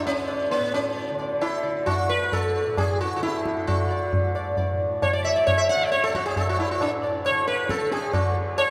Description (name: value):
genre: indian classical, Hindustani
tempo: 134 BPM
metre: 4/4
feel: straight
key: D raga yaman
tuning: A4 = 435 Hz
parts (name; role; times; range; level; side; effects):
- sitar; melody; 0.0-8.7 s; B3 to F#5; -26 LUFS; equal; none
- tanpura; drone; 0.0-8.7 s; D2 to D3; -37 LUFS; equal; none
- tabla; percussion; 0.1-8.7 s; none; -29 LUFS; equal; none
room: wet cathedral reverb, RT60 5.8 s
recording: in a vast, echoing space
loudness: -24 LUFS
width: mono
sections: 0.0-8.7 A section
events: none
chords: none